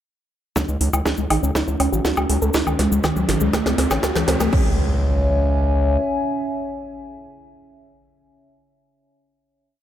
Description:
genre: melodic techno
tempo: 121 BPM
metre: 4/4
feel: straight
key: C# harmonic minor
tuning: A4 = 444 Hz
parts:
  - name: dark analog pad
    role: sustained chords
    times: 1.4-8.4 s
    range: C#4 to G#5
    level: -26 LUFS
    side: left 1 dB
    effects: chorus, phaser, sidechain pumping
  - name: soft round pluck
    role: arpeggios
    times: 0.6-4.8 s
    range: D#3 to A4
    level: -23 LUFS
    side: right 1 dB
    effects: chorus, sidechain pumping, tape echo
  - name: gritty driven synth bass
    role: bass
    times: 0.6-6.0 s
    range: G#1 to C#2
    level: -21 LUFS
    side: equal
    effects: distortion, sidechain pumping
  - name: electronic kick drum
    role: drums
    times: 0.6-4.6 s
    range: none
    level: -24 LUFS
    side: equal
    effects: overdrive, high-pass filter on kick, high-pass filter on room
  - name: house drum kit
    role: drums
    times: 0.6-4.6 s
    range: crash cymbal, hi-hat, snare drum, woodblock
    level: -24 LUFS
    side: equal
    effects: overdrive, sidechain pumping on hats, sidechain pumping on perc, sidechain pumping on cymbals, tape echo
  - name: cabasa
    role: percussion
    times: 0.6-4.5 s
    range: none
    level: -32 LUFS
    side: left 3 dB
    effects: none
  - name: riser and impact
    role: sound effects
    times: 2.3-8.4 s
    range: none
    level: -31 LUFS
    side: right 1 dB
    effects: none
room: moderate spring reverb, RT60 1.1 s, digital ambience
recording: echo-heavy mix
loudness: -18 LUFS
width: side -11 dB against mid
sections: 0.6-4.5 build; 4.5-8.5 final chord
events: build-up 0.6-4.5; drum fill 0.6-4.5; filter sweep on synth arpeggio sound 0.6-4.5; riser 2.3-4.5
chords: 0.6 C#m; 1.6 F#m; 2.5 G#/C#; 3.5 A; 4.5 C#m

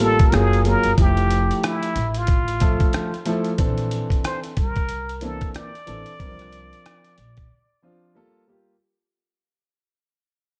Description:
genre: hip hop, jazz-hop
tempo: 92 BPM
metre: 4/4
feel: swing 60% on 16ths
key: unclear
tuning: A4 = 441 Hz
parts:
  - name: trumpet with plunger mute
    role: melody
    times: 0.0-8.2 s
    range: E4 to D5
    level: -28 LUFS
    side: equal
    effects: tape echo
  - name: warm concert grand piano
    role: accompaniment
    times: 0.0-8.7 s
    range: E3 to E5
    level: -26 LUFS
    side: equal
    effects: none
  - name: upright bass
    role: bass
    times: 0.0-7.4 s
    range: F1 to C2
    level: -26 LUFS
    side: equal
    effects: none
  - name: trip hop sampler-style drum kit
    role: drums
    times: 0.0-7.5 s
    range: hi-hat, kick drum, rim click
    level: -23 LUFS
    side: equal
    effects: vintage 12-bit sampler grit
room: small room ambience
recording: dark, warm production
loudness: -21 LUFS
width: mono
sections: 0.0-8.8 A section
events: fade-out 0.0-8.8; break 7.5-8.8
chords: 0.3 F#maj9; 1.0 Fmaj9; 3.6 Bbmaj9#11; 6.2 C9sus4; 8.2 Gm9

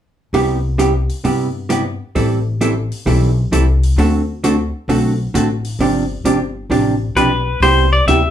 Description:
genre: country, western swing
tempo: 132 BPM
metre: 4/4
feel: swing 66% on 8ths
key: C major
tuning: A4 = 440 Hz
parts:
  - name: vintage hollow-body jazz guitar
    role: accompaniment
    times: 0.3-8.2 s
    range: C3 to A4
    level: -16 LUFS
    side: right 2 dB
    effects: none
  - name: upright bass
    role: bass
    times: 0.3-8.3 s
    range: G1 to G2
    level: -18 LUFS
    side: left 1 dB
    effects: none
  - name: hi-hat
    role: drums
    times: 0.3-8.2 s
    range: none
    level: -32 LUFS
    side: left 4 dB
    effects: none
  - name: clean lap steel guitar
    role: melody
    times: 7.2-8.3 s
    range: B4 to E5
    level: -14 LUFS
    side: left 2 dB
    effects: none
room: wet studio reverb, RT60 0.6 s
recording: band playing live in one room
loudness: -14 LUFS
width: side -10 dB against mid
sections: 0.3-7.6 A section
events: none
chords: 0.3 Cmaj7; 2.2 Am7; 4.0 D7; 5.8 G7sus4; 7.6 Cmaj7

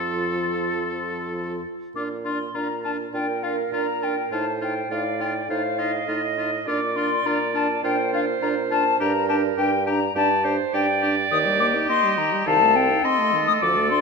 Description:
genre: quick classical-period movement for wind quintet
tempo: 103 BPM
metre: 4/4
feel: straight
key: Bb major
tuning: A4 = 439 Hz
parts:
  - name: silver concert flute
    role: melody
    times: 0.0-14.0 s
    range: Eb5 to Eb6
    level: -24 LUFS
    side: left 7 dB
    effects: none
  - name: bright oboe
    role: second line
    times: 0.0-14.0 s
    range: F4 to A4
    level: -29 LUFS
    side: left 3 dB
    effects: none
  - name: bright clarinet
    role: accompaniment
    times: 0.0-14.0 s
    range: F4 to F5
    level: -26 LUFS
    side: right 8 dB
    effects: none
  - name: warm French horn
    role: accompaniment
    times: 0.0-14.0 s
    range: Eb3 to Eb4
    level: -29 LUFS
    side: right 2 dB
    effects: none
  - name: mellow bassoon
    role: bass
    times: 0.0-14.0 s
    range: C2 to Bb2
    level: -28 LUFS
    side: right 3 dB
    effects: none
room: moderate concert hall reverb, RT60 1.8 s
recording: none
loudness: -20 LUFS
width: side -4 dB against mid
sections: 0.0-2.0 A section; 2.0-14.0 B section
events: none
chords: 0.0 F; 2.0 Bb; 4.3 F7/A; 6.7 Bb; 9.0 Gm; 11.3 Eb; 12.5 Adim/C

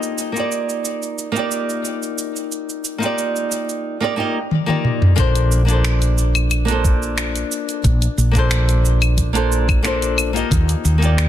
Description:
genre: sunset chillout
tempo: 90 BPM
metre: 4/4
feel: straight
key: Bb major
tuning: A4 = 441 Hz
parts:
  - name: flamenco guitar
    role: accompaniment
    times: 0.0-11.3 s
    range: Bb3 to Eb5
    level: -21 LUFS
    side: moving between left 8 dB and right 5 dB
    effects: auto-pan, ping-pong delay
  - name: smooth R&B drum kit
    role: drums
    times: 0.0-11.3 s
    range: cabasa, claves, finger snaps, hi-hat, toms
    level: -21 LUFS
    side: equal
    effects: soft clipping on snare
  - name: woody fretless electric bass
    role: bass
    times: 5.2-11.3 s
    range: Bb1 to Eb2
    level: -17 LUFS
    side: equal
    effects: analog chorus
  - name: electronic kick drum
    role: drums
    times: 5.2-10.7 s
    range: none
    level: -18 LUFS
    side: equal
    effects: none
room: light reverb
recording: dense, heavily limited modern master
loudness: -16 LUFS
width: side -11 dB against mid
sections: 0.0-5.2 A section; 5.2-11.3 B section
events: drum fill 4.5-5.2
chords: 0.0 Ebmaj7; 5.2 Bbmaj7; 10.5 Ebmaj7

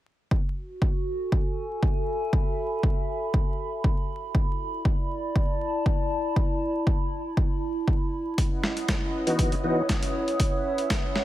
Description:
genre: deep house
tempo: 119 BPM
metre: 4/4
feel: swing 53% on 16ths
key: F# minor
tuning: A4 = 440 Hz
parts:
  - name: electronic kick drum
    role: drums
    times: 0.3-11.0 s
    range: none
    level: -25 LUFS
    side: equal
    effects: none
  - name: warbly tape-like pad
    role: texture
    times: 0.7-11.2 s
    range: E4 to D#6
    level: -30 LUFS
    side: right 1 dB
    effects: chorus, built-in reverb, sidechain pumping
  - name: warm analog pad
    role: sustained chords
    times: 8.4-11.2 s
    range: C#4 to F#5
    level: -34 LUFS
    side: equal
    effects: chorus, vintage 12-bit sampler grit, sidechain pumping
  - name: dusty soul sampler-style drum kit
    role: drums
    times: 8.4-11.2 s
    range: hi-hat, snare drum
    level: -30 LUFS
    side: equal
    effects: none
  - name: tonewheel organ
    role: stabs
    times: 9.3-9.8 s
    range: E3 to F#4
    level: -27 LUFS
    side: equal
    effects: chorus vibrato, slow rotary speaker, sidechain pumping, digital delay
room: little or no reverb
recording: vinyl crackle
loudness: -24 LUFS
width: side -14 dB against mid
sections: 0.3-11.2 A section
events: none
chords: 0.3 F#m11; 4.1 Bm7; 8.4 C#m11

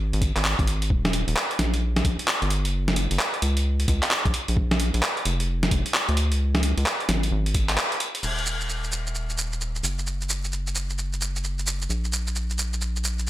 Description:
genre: UK garage, two-step garage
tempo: 131 BPM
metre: 4/4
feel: swing 64% on 16ths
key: unclear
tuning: A4 = 440 Hz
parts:
  - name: rubbery square bass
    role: bass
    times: 0.0-13.3 s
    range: Eb1 to D2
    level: -25 LUFS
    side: equal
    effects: none
  - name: boom bap sampler-style drum kit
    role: drums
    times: 0.1-13.3 s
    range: crash cymbal, handclaps, hi-hat, shaker, snare drum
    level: -25 LUFS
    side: equal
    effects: none
  - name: electronic kick drum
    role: drums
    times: 0.2-7.7 s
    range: none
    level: -25 LUFS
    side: equal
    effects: none
room: little or no reverb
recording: none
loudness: -22 LUFS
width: side -14 dB against mid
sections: 0.0-8.2 A section; 8.2-13.3 B section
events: band accent 7.8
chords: none

